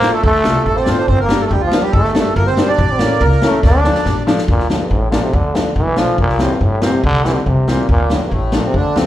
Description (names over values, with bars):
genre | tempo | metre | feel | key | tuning
klezmer | 141 BPM | 2/4 | straight | D minor | A4 = 440 Hz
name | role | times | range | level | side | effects
growling trombone | melody | 0.0-9.1 s | G2 to D4 | -18 LUFS | equal | plate reverb, slapback echo
accordion | second line | 0.0-4.2, 7.9-9.1 s | A3 to D5 | -20 LUFS | right 3 dB | plate reverb, slapback echo
warm upright piano | accompaniment | 0.0-9.1 s | E3 to F4 | -19 LUFS | left 2 dB | plate reverb, slapback echo
street-band drum kit | drums | 0.0-9.1 s | kick drum, snare drum | -19 LUFS | equal | none
upright bass | bass | 0.2-9.0 s | G1 to G2 | -18 LUFS | equal | none
room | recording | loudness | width
light reverb | live gig heard through the venue's PA, club ambience | -12 LUFS | side -13 dB against mid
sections
0.0-4.5 A section; 4.5-9.1 B section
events
drum fill 3.6-4.5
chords
0.0 Dm; 1.1 Gm; 2.8 A; 3.6 Dm; 6.2 C; 7.9 Dm